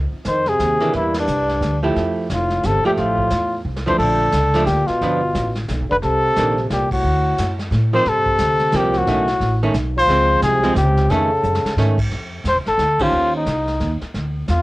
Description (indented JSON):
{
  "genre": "jazz, small-group swing and bop",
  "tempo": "177 BPM",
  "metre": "3/4",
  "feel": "swing 62% on 8ths",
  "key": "F major",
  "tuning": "A4 = 440 Hz",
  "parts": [
    { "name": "upright bass", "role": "bass", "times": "0.0-14.6 s", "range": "F1 to A2", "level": "-21 LUFS", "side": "equal", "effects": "none" },
    { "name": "vintage brush drum kit", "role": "drums", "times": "0.2-14.6 s", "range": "brushed snare drum, crash cymbal, hi-hat, kick drum, ride cymbal, snare drum, toms", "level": "-29 LUFS", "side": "equal", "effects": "cassette tape" },
    { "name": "breathy trumpet", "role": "melody", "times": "0.3-14.6 s", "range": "D4 to C5", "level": "-18 LUFS", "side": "left 1 dB", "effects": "plate reverb" },
    { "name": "breathy trombone", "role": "second line", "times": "0.3-11.8 s", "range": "G2 to F3", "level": "-26 LUFS", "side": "right 1 dB", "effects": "plate reverb" },
    { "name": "archtop guitar, miked and amplified", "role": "accompaniment", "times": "0.8-13.4 s", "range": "Eb3 to C5", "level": "-22 LUFS", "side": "right 2 dB", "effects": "plate reverb" }
  ],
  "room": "moderate booth ambience, RT60 0.2 s",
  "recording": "home recording on cassette",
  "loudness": "-16 LUFS",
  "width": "side -19 dB against mid",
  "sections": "0.0-4.0 A section; 4.0-12.1 B section; 12.1-14.6 A section",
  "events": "band accent 1.1, 6.9, 13.0; drum fill 3.7-4.0, 11.4-11.8",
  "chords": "0.0 Dbmaj9; 0.9 C9; 2.0 Fmaj9; 4.0 Bbmaj7; 5.0 G7; 6.0 Cm9; 7.0 D7; 8.1 Gm11; 9.1 B9; 10.1 Dbmaj7; 11.1 F7alt; 12.1 Fmaj9; 13.1 Eb6"
}